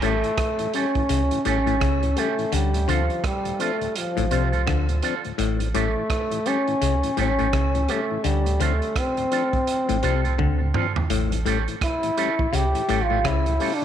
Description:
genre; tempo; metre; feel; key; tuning
roots reggae; 84 BPM; 4/4; swing 61% on 16ths; D minor; A4 = 437 Hz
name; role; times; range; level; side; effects
warm trombone; melody; 0.0-13.8 s; F3 to G4; -25 LUFS; equal; tape echo
electric guitar with an envelope filter; accompaniment; 0.0-13.8 s; C4 to A4; -30 LUFS; right 11 dB; spring reverb, tape echo
mellow tonewheel organ; accompaniment; 0.0-13.8 s; D2 to D4; -32 LUFS; left 8 dB; slow rotary speaker, tape echo
clav; riff; 0.0-13.5 s; A2 to D3; -28 LUFS; left 9 dB; none
soft dub sub bass; bass; 0.0-13.6 s; A1 to D2; -24 LUFS; right 1 dB; none
crunchy breakbeat drum kit; drums; 0.0-13.8 s; hi-hat, kick drum, rim click, toms; -29 LUFS; right 3 dB; none
room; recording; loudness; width
light reverb, small room ambience; 1960s-style stereo with parts hard left and right; -20 LUFS; side -10 dB against mid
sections
0.0-13.8 A section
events
drum fill 10.4-11.1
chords
0.0 A7; 2.5 Dm7; 5.4 A7; 8.2 Dm7; 11.1 A7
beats
0.38 1.09 1.81 | 2.52 3.24 3.95 4.67 | 5.38 6.10 6.81 7.53 | 8.24 8.96 9.67 10.39 | 11.10 11.82 12.53 13.24

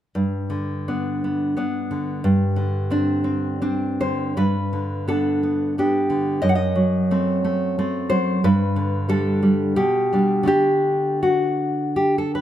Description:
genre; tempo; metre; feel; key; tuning
romantic piece for solo classical guitar; 76-92 BPM; 3/4; rubato; G major; A4 = 440 Hz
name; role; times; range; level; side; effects
nylon-string guitar; solo; 0.1-12.4 s; F#2 to F#5; -19 LUFS; equal; none
room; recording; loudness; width
moderate recital hall reverb, RT60 1.7 s; none; -19 LUFS; side -11 dB against mid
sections
0.2-4.4 A section; 4.4-12.4 B section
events
none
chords
0.2 G; 2.2 Gsus4; 4.4 G; 6.4 F#dim7; 8.4 G; 9.8 G/B; 10.5 D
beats
| 0.17 0.87 1.57 | 2.24 2.92 3.62 | 4.38 5.08 5.75 | 6.41 7.09 7.77 | 8.42 9.09 9.78 | 10.51 11.24 11.97

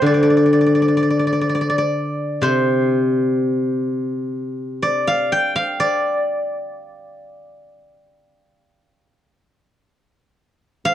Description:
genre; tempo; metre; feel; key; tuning
chinese traditional, Chinese solo plucked strings; 62 BPM; 4/4; rubato; D yu mode; A4 = 440 Hz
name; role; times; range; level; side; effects
steel-string zither; solo; 0.0-10.9 s; C3 to A5; -16 LUFS; left 1 dB; none
room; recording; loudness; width
light reverb; worn, warbling old tape, cassette tape, warbly pitch drift; -16 LUFS; side -11 dB against mid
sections
0.0-10.9 A section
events
none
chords
none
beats
| 0.03 0.99 1.96 2.92 | 3.88 4.83 5.80 6.79 | 7.79 8.78 9.79 10.84

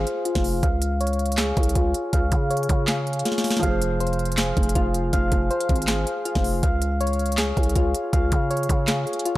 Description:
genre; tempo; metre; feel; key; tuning
hip hop, trap; 160 BPM; 4/4; half-time; unclear; A4 = 440 Hz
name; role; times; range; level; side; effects
soft electric-piano-like synth keys; arpeggios; 0.0-9.4 s; F4 to F5; -25 LUFS; left 1 dB; chorus, low-pass filter, tape echo
growling 808-style bass; bass; 0.0-9.4 s; F1 to Db3; -25 LUFS; equal; none
trap drum kit; drums; 0.1-9.4 s; handclaps, hi-hat, kick drum, snare drum; -23 LUFS; equal; overdrive
dark concert grand piano; accompaniment; 3.6-6.7 s; F3 to C5; -31 LUFS; right 2 dB; low-pass filter
room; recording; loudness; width
digital ambience; none; -20 LUFS; side -16 dB against mid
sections
0.0-9.4 A section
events
filter sweep 0.0-3.6; drum fill 3.3-3.6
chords
0.0 Fm; 0.6 Db; 3.6 Fm; 6.6 Db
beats
0.26 | 0.63 1.00 1.38 1.75 | 2.13 2.50 2.88 3.25 | 3.63 4.00 4.38 4.75 | 5.13 5.50 5.88 6.25 | 6.63 7.00 7.38 7.75 | 8.13 8.51 8.88 9.26

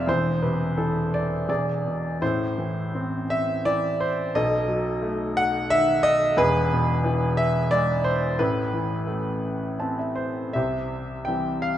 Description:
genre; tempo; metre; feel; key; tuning
classical, lyrical solo piano; 77-90 BPM; 3/4; rubato; A harmonic minor; A4 = 436 Hz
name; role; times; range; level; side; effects
clear grand piano; solo; 0.0-11.8 s; E1 to A5; -22 LUFS; equal; none
room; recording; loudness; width
moderate recital hall reverb, RT60 1.5 s; minimal, uncompressed stereo recording; -22 LUFS; side -11 dB against mid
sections
0.0-10.5 A section; 10.5-11.8 B section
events
grand piano fill 9.4-10.5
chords
0.1 Cmaj13/E; 1.5 E; 2.2 Am; 4.3 B7; 6.4 E; 8.4 Amadd9; 10.5 C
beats
| 0.08 0.78 1.49 | 2.22 2.93 3.65 | 4.34 5.02 5.70 | 6.36 7.03 7.71 | 8.39 9.06 9.79 | 10.55 11.28

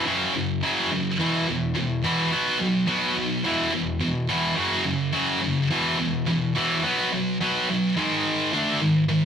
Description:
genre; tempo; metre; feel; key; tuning
rock; 106 BPM; 4/4; straight; unclear; A4 = 439 Hz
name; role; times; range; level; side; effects
heavy high-gain guitar; solo; 0.0-9.2 s; E2 to D4; -21 LUFS; equal; distortion
room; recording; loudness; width
moderate stone room reverb, RT60 1.0 s; rough rehearsal-room recording, warm saturation; -21 LUFS; side -8 dB against mid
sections
0.0-8.0 A section; 8.0-9.2 B section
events
none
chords
0.1 F#5; 1.2 E5; 2.3 B5; 3.5 E5; 4.6 F#5; 5.7 E5; 6.8 B5; 8.0 G#5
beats
0.06 0.63 | 1.19 1.76 2.32 2.89 | 3.45 4.01 4.58 5.14 | 5.71 6.27 6.83 7.39 | 7.96 8.52 9.08

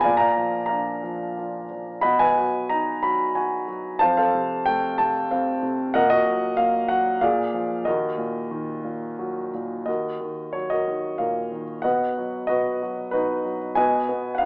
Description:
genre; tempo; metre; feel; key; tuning
classical, lyrical solo piano; 92 BPM; 3/4; rubato; Eb minor; A4 = 440 Hz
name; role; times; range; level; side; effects
warm grand piano; solo; 0.0-14.5 s; Eb2 to B5; -21 LUFS; equal; none
room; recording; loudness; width
light reverb; AM radio sound; -21 LUFS; side -32 dB against mid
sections
0.0-9.9 A section; 9.9-14.5 B section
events
none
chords
0.0 Bb; 2.0 B; 4.0 F; 6.0 Ebm/Bb; 7.2 Bb7; 7.9 Ebm; 11.8 B; 13.8 Abm/Cb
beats
| 0.05 0.69 1.36 | 2.03 2.70 3.35 | 4.01 4.67 5.31 | 5.95 6.58 7.22 | 7.86 8.51 9.19 | 9.88 10.54 11.19 | 11.84 12.49 13.13 | 13.76 14.39

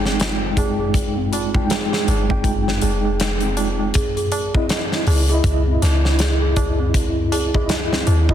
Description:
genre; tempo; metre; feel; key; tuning
trip hop; 80 BPM; 4/4; swing 59% on 16ths; F minor; A4 = 440 Hz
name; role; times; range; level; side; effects
mellow tine electric piano; accompaniment; 0.0-8.3 s; Ab3 to G5; -24 LUFS; right 1 dB; medium stereo tremolo, vintage 12-bit sampler grit, tape echo
celesta; arpeggios; 0.0-8.3 s; C4 to Ab4; -26 LUFS; right 2 dB; tape echo
soft 808-style bass; bass; 0.0-8.3 s; F1 to Eb2; -20 LUFS; equal; tube saturation
big rock drum kit; drums; 0.1-8.3 s; hi-hat, kick drum, snare drum; -21 LUFS; left 1 dB; soft clipping on snare
tabla; percussion; 0.1-8.3 s; none; -32 LUFS; right 6 dB; none
room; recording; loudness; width
light reverb, studio reverb; dense, heavily limited modern master; -16 LUFS; side -10 dB against mid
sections
0.0-8.3 A section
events
filter sweep on tine electric piano 0.0-8.3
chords
0.0 Fm7; 3.9 Dbmadd9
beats
0.20 | 0.95 1.70 2.45 3.20 | 3.95 4.70 5.45 6.20 | 6.95 7.70

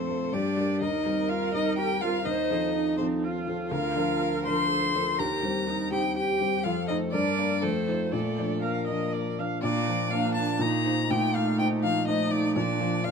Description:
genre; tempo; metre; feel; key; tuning
quick classical-period movement for piano quartet; 123 BPM; 3/4; rubato; Bb major; A4 = 438 Hz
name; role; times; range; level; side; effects
rich violin; melody; 0.0-13.1 s; A4 to C6; -30 LUFS; left 5 dB; none
warm cello; second line; 0.0-13.1 s; F3 to C5; -31 LUFS; right 6 dB; none
warm grand piano; accompaniment; 0.0-13.1 s; D2 to D5; -29 LUFS; left 2 dB; none
warm viola; accompaniment; 0.0-13.1 s; D4 to F5; -32 LUFS; right 4 dB; none
room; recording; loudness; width
moderate stone room reverb, RT60 1.1 s; minimal, uncompressed stereo recording; -24 LUFS; side -6 dB against mid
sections
0.0-9.6 A section; 9.6-13.1 B section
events
none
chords
0.3 Gm; 0.8 Cm7/Eb; 2.3 F7/Eb; 3.7 Bb/D; 5.2 Cm7/Eb; 6.6 F7; 7.1 Gm; 7.6 F7; 8.1 Bb; 10.6 Cm7/Bb; 11.1 F7/Bb; 12.6 Bb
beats
0.33 | 0.82 1.30 1.78 | 2.26 2.75 3.23 | 3.71 4.21 4.70 | 5.18 5.67 6.16 | 6.64 7.13 7.63 | 8.13 8.63 9.13 | 9.63 10.11 10.60 | 11.10 11.59 12.07 | 12.56 13.05

